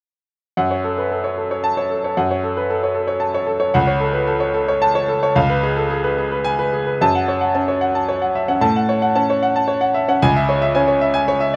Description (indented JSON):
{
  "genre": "classical, virtuoso piano study",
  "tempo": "113 BPM",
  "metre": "3/4",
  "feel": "rubato",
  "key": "F# minor",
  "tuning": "A4 = 441 Hz",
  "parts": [
    { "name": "bright grand piano", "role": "solo", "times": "0.6-11.6 s", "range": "C#2 to A5", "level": "-18 LUFS", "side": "equal", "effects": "none" }
  ],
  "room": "light reverb",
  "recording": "none",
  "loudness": "-18 LUFS",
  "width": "mono",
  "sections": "0.6-7.0 A section; 7.0-11.6 B section",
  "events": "none",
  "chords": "0.6 F#m; 3.7 F#m/C#; 5.4 C#7; 7.0 F#m; 8.6 F#m/A; 10.2 C#m"
}